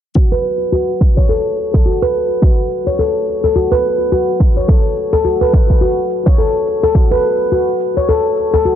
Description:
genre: organic downtempo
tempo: 106 BPM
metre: 4/4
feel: swing 58% on 16ths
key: F# minor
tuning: A4 = 440 Hz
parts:
  - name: handpan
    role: arpeggios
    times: 0.2-8.8 s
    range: F#4 to C#5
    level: -14 LUFS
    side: left 1 dB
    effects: low-pass filter, digital delay
  - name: electronic kick drum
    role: drums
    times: 0.2-7.1 s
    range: none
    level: -11 LUFS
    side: equal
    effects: overdrive
  - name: shaker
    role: drums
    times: 0.2-8.8 s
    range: none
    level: -52 LUFS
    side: left 1 dB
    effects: none
room: light reverb, digital ambience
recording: dense, heavily limited modern master, low-pass filter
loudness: -12 LUFS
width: side -10 dB against mid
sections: 0.2-8.8 A section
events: filter sweep on handpan 0.2-8.8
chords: none

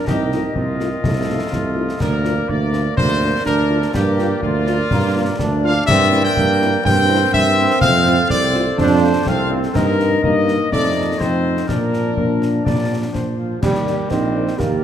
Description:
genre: military-style march for wind band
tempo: 124 BPM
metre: 2/4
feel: straight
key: Bb major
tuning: A4 = 439 Hz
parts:
  - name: warm trumpet section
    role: melody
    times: 0.0-14.8 s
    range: F4 to G5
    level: -21 LUFS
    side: left 1 dB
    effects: none
  - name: dark woodwind section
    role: second line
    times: 0.0-14.8 s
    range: A4 to Eb5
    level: -25 LUFS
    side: left 1 dB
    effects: none
  - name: dark trombone section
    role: sustained chords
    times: 0.0-14.8 s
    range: F3 to Eb4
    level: -23 LUFS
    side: right 3 dB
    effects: none
  - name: mellow tuba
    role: bass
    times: 0.1-14.8 s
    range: Bb1 to Bb2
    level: -20 LUFS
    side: right 2 dB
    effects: none
  - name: concert snare drum, concert bass drum and clash cymbals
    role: drums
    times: 0.1-14.8 s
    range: none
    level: -24 LUFS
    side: left 2 dB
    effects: none
  - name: mellow French horn section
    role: accompaniment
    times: 0.3-14.4 s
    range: F3 to D5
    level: -26 LUFS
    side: left 7 dB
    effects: none
  - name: clear euphonium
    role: second line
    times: 13.6-14.8 s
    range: Eb4 to G4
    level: -23 LUFS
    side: right 6 dB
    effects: none
room: moderate concert hall reverb, RT60 2.2 s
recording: faint mains hum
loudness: -15 LUFS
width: side -9 dB against mid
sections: 0.0-13.6 A section; 13.6-14.8 B section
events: none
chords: 0.1 F7/C; 2.0 Bb/D; 3.9 Gm7; 5.9 C7/G; 7.8 F; 9.8 Eb/G; 10.7 F7; 11.7 Bb; 13.6 Ebmaj7

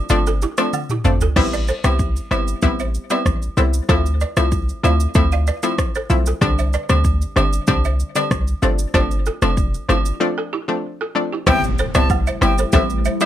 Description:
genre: afrobeats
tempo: 95 BPM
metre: 4/4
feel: straight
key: A minor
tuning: A4 = 441 Hz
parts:
  - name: analog pluck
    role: accompaniment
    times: 0.0-13.3 s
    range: D3 to E4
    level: -21 LUFS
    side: left 2 dB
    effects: chorus
  - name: warm 808-style bass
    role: bass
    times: 0.1-13.1 s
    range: F1 to D2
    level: -18 LUFS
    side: equal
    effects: none
  - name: afro-pop drum kit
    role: drums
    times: 0.1-13.3 s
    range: crash cymbal, kick drum, rim click, shaker, toms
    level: -21 LUFS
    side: equal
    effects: none
  - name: agogo bells and woodblock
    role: percussion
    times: 0.1-13.3 s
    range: none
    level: -27 LUFS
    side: right 3 dB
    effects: none
  - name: balafon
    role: riff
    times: 0.3-13.3 s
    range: E4 to F5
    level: -26 LUFS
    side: right 4 dB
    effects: ping-pong delay
  - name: bright silver concert flute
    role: melody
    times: 11.5-12.6 s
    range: G5 to A5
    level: -24 LUFS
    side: left 3 dB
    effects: ping-pong delay
  - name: deep dark ambient pad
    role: sustained chords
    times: 12.2-13.3 s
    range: G3 to E4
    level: -27 LUFS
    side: equal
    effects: chorus, built-in reverb
  - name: impact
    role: sound effects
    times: 11.5-13.3 s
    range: none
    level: -29 LUFS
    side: equal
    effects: none
room: light reverb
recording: none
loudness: -16 LUFS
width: side -12 dB against mid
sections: 0.0-11.5 A section; 11.5-13.3 B section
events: break 0.0-1.4, 10.2-11.5; drum fill 0.7-1.4; impact 11.5-13.3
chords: 0.0 G7sus4; 1.4 Am7; 3.9 Dm7; 6.4 Csus2; 8.6 G7sus4; 11.5 Am7

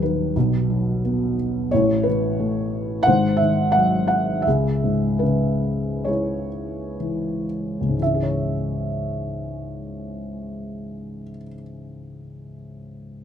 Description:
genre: classical, lyrical solo piano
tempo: 57-91 BPM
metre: 4/4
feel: rubato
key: C# minor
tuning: A4 = 439 Hz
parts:
  - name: felt-muted upright piano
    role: solo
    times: 0.0-13.2 s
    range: D#1 to F#5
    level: -21 LUFS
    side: equal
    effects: none
room: light reverb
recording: close, detailed microphones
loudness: -19 LUFS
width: side -8 dB against mid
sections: 0.0-8.0 A section; 8.0-11.9 B section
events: slowing down 1.7-8.0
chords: 0.4 B; 1.7 A5; 3.1 G#7; 4.5 C#m

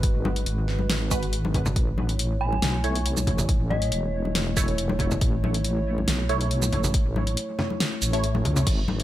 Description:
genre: deep dubstep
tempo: 139 BPM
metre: 4/4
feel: half-time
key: unclear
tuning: A4 = 440 Hz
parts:
  - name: dark analog pad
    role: sustained chords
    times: 0.0-9.0 s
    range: G#3 to C#5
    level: -32 LUFS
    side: equal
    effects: chorus
  - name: deep soft wobble bass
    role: bass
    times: 0.0-9.0 s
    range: E1 to C#2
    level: -26 LUFS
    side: equal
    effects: chorus
  - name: deep house drum kit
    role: drums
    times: 0.0-9.0 s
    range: crash cymbal, hi-hat, shaker, snare drum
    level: -28 LUFS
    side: equal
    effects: none
  - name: electronic kick drum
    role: drums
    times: 0.0-8.8 s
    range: none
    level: -25 LUFS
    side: equal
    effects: none
  - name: congas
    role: percussion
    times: 0.2-9.0 s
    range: none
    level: -30 LUFS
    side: left 2 dB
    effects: dub echo
  - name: filtered dub chord stab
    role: stabs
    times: 1.1-8.3 s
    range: G#3 to C#5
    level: -33 LUFS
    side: right 2 dB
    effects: phaser, analog chorus, dub echo
  - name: dark detuned synth bell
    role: melody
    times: 2.4-4.3 s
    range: D#5 to G#5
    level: -33 LUFS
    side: left 1 dB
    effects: chorus, phaser, dub echo
room: light reverb, digital ambience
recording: none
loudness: -22 LUFS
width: side -14 dB against mid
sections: 0.0-9.0 A section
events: kick drops out 7.8-8.7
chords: 0.0 G#m7; 1.8 A

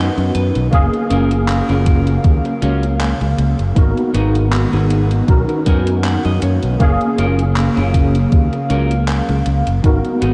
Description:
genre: vaporwave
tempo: 79 BPM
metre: 4/4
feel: swing 55% on 16ths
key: F# major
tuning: A4 = 440 Hz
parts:
  - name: tine electric piano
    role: accompaniment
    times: 0.0-10.3 s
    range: A#3 to E#5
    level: -22 LUFS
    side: equal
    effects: overdrive, ensemble chorus, analog delay
  - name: warbly tape-like pad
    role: sustained chords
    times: 0.0-10.3 s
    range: C#3 to E#5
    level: -25 LUFS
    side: equal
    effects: chorus, built-in reverb
  - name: clean electric guitar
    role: riff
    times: 0.0-10.3 s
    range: B3 to G#5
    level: -27 LUFS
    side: equal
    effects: subtle chorus, analog delay
  - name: fretless electric bass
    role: bass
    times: 0.0-10.3 s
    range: F#1 to F#2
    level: -19 LUFS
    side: equal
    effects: ensemble chorus
  - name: gated 80s digital drum machine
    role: drums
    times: 0.2-10.3 s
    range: handclaps, hi-hat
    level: -30 LUFS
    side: equal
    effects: gated reverb, overdrive, vintage 12-bit sampler grit
  - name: electronic kick drum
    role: drums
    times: 0.7-10.0 s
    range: none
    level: -16 LUFS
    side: equal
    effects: overdrive, vintage 12-bit sampler grit
room: moderate huge ambient reverb, RT60 6.2 s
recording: dreamy mix soaked in reverb, cassette tape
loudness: -15 LUFS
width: mono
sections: 0.0-10.3 A section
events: clean electric guitar fill 0.0-0.7, 5.3-6.8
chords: 0.0 B; 0.7 F#maj7; 3.8 G#m7; 5.3 Bmaj7; 6.8 F#maj7

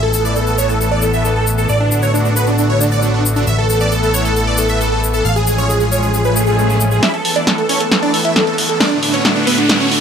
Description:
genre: uplifting trance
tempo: 135 BPM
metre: 4/4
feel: straight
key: A major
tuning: A4 = 439 Hz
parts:
  - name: supersaw chords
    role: melody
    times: 0.0-10.0 s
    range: B3 to E#5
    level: -17 LUFS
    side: right 1 dB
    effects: phaser, digital delay
  - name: lush unison pad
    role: sustained chords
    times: 0.0-10.0 s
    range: A2 to A4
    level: -20 LUFS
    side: equal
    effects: chorus
  - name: fat analog bass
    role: bass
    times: 0.0-7.0 s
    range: A1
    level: -17 LUFS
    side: equal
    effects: none
  - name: egg shaker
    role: percussion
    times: 0.1-7.0 s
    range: none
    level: -24 LUFS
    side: left 4 dB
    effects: none
  - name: swell and riser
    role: sound effects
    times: 6.3-10.0 s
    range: none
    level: -22 LUFS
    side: left 1 dB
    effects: none
  - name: punchy analog drum machine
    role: drums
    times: 7.0-10.0 s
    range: hi-hat, snare drum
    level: -15 LUFS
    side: equal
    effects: low-pass filter on snare, low-pass filter on hats, low-pass filter on room
room: light reverb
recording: none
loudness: -12 LUFS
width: side -7 dB against mid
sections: 0.0-7.0 A section; 7.0-10.0 B section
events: swell 6.3-7.0; build-up 7.0-10.0; drum fill 7.0-10.0; riser 7.9-10.0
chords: 0.0 Asus2; 1.7 D6/A; 3.5 Asus2; 5.2 C#/A; 7.0 Asus2; 8.8 D6/A

